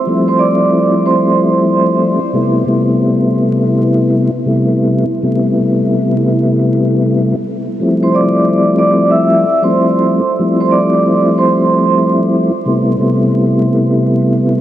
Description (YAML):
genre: hip hop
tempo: 93 BPM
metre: 4/4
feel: swing 62% on 16ths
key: A minor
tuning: A4 = 440 Hz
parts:
  - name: vibraphone with soft mallets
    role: melody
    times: 0.0-2.0, 8.0-12.3 s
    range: C5 to E6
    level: -15 LUFS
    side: right 3 dB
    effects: high-pass filter, low-pass filter, analog delay
  - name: mellow tonewheel organ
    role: accompaniment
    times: 0.1-14.6 s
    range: C3 to E4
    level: -11 LUFS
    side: left 1 dB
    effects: chorus vibrato, fast rotary speaker, cassette tape, high-pass filter, low-pass filter
room: wet huge ambient reverb, RT60 5.3 s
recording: dreamy mix soaked in reverb, vinyl crackle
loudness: -10 LUFS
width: side -12 dB against mid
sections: 0.0-14.6 A section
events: none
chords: 0.0 Fmaj7; 2.3 Am7; 7.8 Fmaj7; 12.7 Am7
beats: | 0.08 0.72 1.37 2.01 | 2.66 3.30 3.95 4.59 | 5.24 5.88 6.53 7.17 | 7.82 8.46 9.11 9.76 | 10.40 11.04 11.69 12.34 | 12.98 13.63 14.27